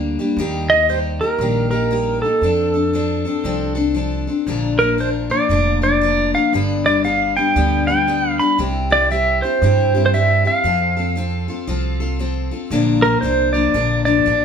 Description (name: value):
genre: honky-tonk and classic country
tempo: 117 BPM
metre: 4/4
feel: swing 62% on 8ths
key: Bb major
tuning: A4 = 442 Hz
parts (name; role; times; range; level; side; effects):
- picked steel-string acoustic guitar; accompaniment; 0.0-14.4 s; G2 to B4; -21 LUFS; left 4 dB; none
- upright bass; bass; 0.0-14.4 s; F1 to G2; -22 LUFS; right 1 dB; none
- pedal steel guitar; melody; 0.7-14.4 s; A4 to B5; -17 LUFS; right 1 dB; none
room: moderate large studio reverb, RT60 1.0 s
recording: band playing live in one room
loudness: -15 LUFS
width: side -7 dB against mid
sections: 0.0-12.7 A section; 12.7-14.4 A section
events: none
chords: 0.4 Eb; 2.4 F6; 4.5 Bb; 6.5 G; 8.6 C; 10.6 F; 12.7 Bb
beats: | 0.37 0.88 1.40 1.91 | 2.42 2.94 3.45 3.96 | 4.48 4.99 5.50 6.02 | 6.53 7.05 7.56 8.07 | 8.59 9.10 9.62 10.13 | 10.65 11.16 11.68 12.19 | 12.71 13.22 13.74 14.25